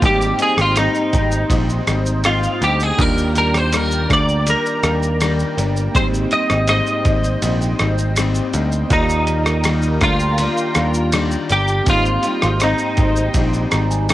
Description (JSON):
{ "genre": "indie pop, bedroom pop", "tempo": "81 BPM", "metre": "4/4", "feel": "straight", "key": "unclear", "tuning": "A4 = 440 Hz", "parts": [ { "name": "mellow tine electric piano", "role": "accompaniment", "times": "0.0-14.1 s", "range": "Bb3 to Bb5", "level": "-28 LUFS", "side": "right 6 dB", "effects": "medium stereo tremolo, cassette tape" }, { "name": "nylon-string guitar", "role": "accompaniment", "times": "0.0-14.1 s", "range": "Ab2 to Eb4", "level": "-24 LUFS", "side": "left 6 dB", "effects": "wide subtle chorus, vibrato effect, cassette tape" }, { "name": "phased analog pad", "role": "sustained chords", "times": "0.0-14.1 s", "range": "Bb4 to Bb5", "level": "-29 LUFS", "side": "right 1 dB", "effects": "phaser, chorus, cassette tape" }, { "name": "picked electric bass", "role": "bass", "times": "0.0-14.1 s", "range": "G1 to Eb2", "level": "-19 LUFS", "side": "equal", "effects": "none" }, { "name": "dusty soul sampler-style drum kit", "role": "drums", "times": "0.0-14.1 s", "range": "kick drum, ride cymbal, rim click, shaker", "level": "-22 LUFS", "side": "equal", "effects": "cassette tape" }, { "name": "direct-recorded clean electric guitar", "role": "melody", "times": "0.1-14.1 s", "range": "Eb4 to Eb5", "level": "-19 LUFS", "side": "equal", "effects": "ensemble chorus, cassette tape" } ], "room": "little or no reverb", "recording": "home recording on cassette", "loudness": "-15 LUFS", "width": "side -15 dB against mid", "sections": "0.0-14.1 A section", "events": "tine electric piano fill 13.4-14.1", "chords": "0.0 Abmaj7; 3.0 Ebmaj7; 5.9 Abmaj7; 8.9 Ebmaj7; 11.9 Abmaj7" }